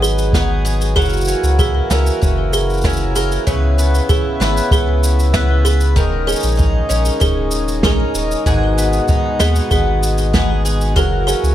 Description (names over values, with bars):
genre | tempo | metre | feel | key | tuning
folktronica | 96 BPM | 4/4 | straight | G# minor | A4 = 439 Hz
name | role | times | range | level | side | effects
music box | second line | 0.0-11.5 s | G#4 | -22 LUFS | right 6 dB | ping-pong delay
pedal harmonium | sustained chords | 0.0-11.5 s | B2 to G#4 | -23 LUFS | left 2 dB | none
picked twelve-string acoustic guitar | arpeggios | 0.0-11.5 s | G#2 to B4 | -21 LUFS | left 1 dB | ping-pong delay
warm sub bass | bass | 0.0-11.5 s | D#1 to D#2 | -17 LUFS | equal | none
cabasa and snare drum | drums | 0.0-11.5 s | none | -23 LUFS | right 2 dB | none
kick drum | drums | 0.3-11.1 s | none | -18 LUFS | equal | none
room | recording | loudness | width
light reverb | none | -13 LUFS | side -12 dB against mid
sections
0.0-11.5 A section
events
none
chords
0.0 G#m7; 1.0 F#7; 3.5 C#m7; 6.0 D#7sus4; 8.5 G#m7; 11.0 F#7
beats
0.34 | 0.97 1.59 2.22 2.84 | 3.47 4.09 4.72 5.34 | 5.97 6.59 7.22 7.84 | 8.47 9.09 9.72 10.34 | 10.97